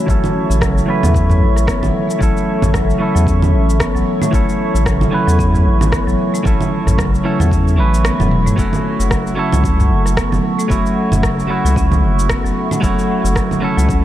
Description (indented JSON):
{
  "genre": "organic downtempo",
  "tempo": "113 BPM",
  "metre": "4/4",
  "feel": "swing 57% on 16ths",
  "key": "F# minor pentatonic",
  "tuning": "A4 = 441 Hz",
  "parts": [
    { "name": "clean electric guitar", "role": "accompaniment", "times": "0.0-14.0 s", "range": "E3 to B4", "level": "-21 LUFS", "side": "right 2 dB", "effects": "sidechain pumping, low-pass filter, tape echo" },
    { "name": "warbly tape-like pad", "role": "sustained chords", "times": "0.0-14.0 s", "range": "A4 to C#6", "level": "-22 LUFS", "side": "left 1 dB", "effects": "chorus, built-in reverb, sidechain pumping" },
    { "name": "marimba with medium mallets", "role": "arpeggios", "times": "0.0-14.0 s", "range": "C#3 to C#4", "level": "-20 LUFS", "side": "equal", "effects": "tape echo" },
    { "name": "round analog bass", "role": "bass", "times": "0.1-14.0 s", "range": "E1 to E2", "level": "-15 LUFS", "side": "equal", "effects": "sidechain pumping" },
    { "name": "electronic kick drum", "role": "drums", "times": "0.1-14.0 s", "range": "none", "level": "-20 LUFS", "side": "equal", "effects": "none" },
    { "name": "organic electronic drum kit", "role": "drums", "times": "0.1-14.0 s", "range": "cabasa, congas, rim click, toms", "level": "-22 LUFS", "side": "right 2 dB", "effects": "none" },
    { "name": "udu", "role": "percussion", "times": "1.3-11.2 s", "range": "none", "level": "-20 LUFS", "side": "equal", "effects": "none" }
  ],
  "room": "light reverb",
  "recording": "dark, warm production",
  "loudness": "-12 LUFS",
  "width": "side -13 dB against mid",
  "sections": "0.0-14.0 A section",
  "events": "kick drops out 8.0-8.6; drum fill 8.0-8.6",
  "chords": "0.0 F#m7"
}